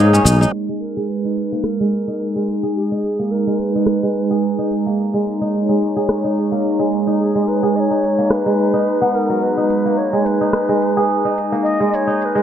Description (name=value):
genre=organic downtempo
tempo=108 BPM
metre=4/4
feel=swing 58% on 16ths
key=G# minor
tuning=A4 = 437 Hz
part: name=reedy Native American-style cedar flute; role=melody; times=0.0-12.4 s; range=G#4 to D#5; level=-22 LUFS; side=equal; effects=tape echo
part: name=warm analog pad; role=sustained chords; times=0.1-12.4 s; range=G#3 to A#5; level=-19 LUFS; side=right 1 dB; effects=chorus
part: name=kora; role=arpeggios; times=0.0-12.4 s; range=F#3 to G#4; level=-20 LUFS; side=equal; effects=low-pass filter, tape echo
part: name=electronic shaker and rim click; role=drums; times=0.1-12.4 s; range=none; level=-21 LUFS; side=equal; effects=none
room=moderate lush hall reverb, RT60 2.0 s, digital ambience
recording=low-pass filter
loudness=-15 LUFS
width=side -9 dB against mid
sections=0.5-12.4 A section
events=filter sweep on kora 0.5-12.4; filter sweep 0.5-12.4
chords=0.0 G#madd9